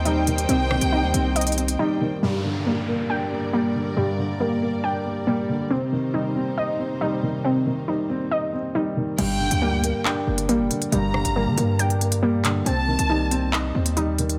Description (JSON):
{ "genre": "hip hop, drill", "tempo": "138 BPM", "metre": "4/4", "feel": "half-time", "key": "G minor", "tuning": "A4 = 440 Hz", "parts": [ { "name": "dark baby grand piano", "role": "accompaniment", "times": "0.0-14.4 s", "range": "G2 to Eb4", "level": "-28 LUFS", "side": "equal", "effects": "none" }, { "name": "dark studio string section", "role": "sustained chords", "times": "0.0-9.2 s", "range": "G2 to G5", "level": "-33 LUFS", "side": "equal", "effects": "none" }, { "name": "warbly dusty pluck", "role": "arpeggios", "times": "0.0-14.4 s", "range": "G3 to G5", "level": "-28 LUFS", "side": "equal", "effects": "chorus, delay" }, { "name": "hard-hitting 808-style bass", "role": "bass", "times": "0.0-1.8, 9.2-14.4 s", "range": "F#1 to D3", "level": "-27 LUFS", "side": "equal", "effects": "none" }, { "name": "drill drum kit", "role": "drums", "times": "0.1-1.8, 9.2-14.4 s", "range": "crash cymbal, handclaps, hi-hat, rim click", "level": "-30 LUFS", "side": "equal", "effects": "none" }, { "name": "warm symphonic violin section", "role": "second line", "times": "0.5-1.3, 9.2-13.5 s", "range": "G5 to Bb5", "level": "-32 LUFS", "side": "equal", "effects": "delay" }, { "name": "downlifter", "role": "sound effects", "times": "2.2-5.7 s", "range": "none", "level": "-39 LUFS", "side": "equal", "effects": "none" } ], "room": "light reverb, small room ambience", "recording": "none", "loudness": "-23 LUFS", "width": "mono", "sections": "0.0-2.2 A section; 2.2-9.2 B section; 9.2-14.4 A section", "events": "drums muted 1.8-2.2", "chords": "0.0 Cm; 2.2 Gm; 5.7 Cm; 9.2 Gm; 12.7 Cm", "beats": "0.05 | 0.49 0.92 1.36 1.79 | 2.23 2.66 3.10 3.53 | 3.97 4.40 4.84 5.27 | 5.71 6.14 6.58 7.01 | 7.45 7.88 8.31 8.75 | 9.19 9.62 10.05 10.49 | 10.92 11.36 11.79 12.23 | 12.66 13.10 13.53 13.97" }